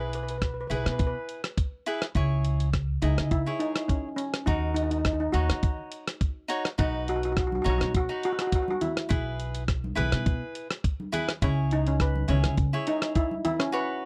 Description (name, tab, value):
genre	calypso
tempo	104 BPM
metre	4/4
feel	straight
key	unclear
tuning	A4 = 439 Hz
part	steel pan	melody	0.0-14.1 s	C#4 to B4	-32 LUFS	equal	none
part	cavaquinho	accompaniment	0.0-14.1 s	D#4 to D#5	-35 LUFS	equal	none
part	upright bass	bass	0.0-12.7 s	B1 to D#3	-30 LUFS	equal	none
part	dusty soul sampler-style drum kit	drums	0.1-13.7 s	hi-hat, kick drum, rim click	-30 LUFS	equal	none
part	congas	percussion	7.5-13.6 s	none	-38 LUFS	equal	none
room	little or no reverb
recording	dry, close 1970s-style studio recording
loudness	-28 LUFS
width	mono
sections	0.0-14.1 A section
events	none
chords	0.0 E/B; 2.2 C#m; 4.5 D#m; 6.8 B; 9.1 E/B; 11.4 C#m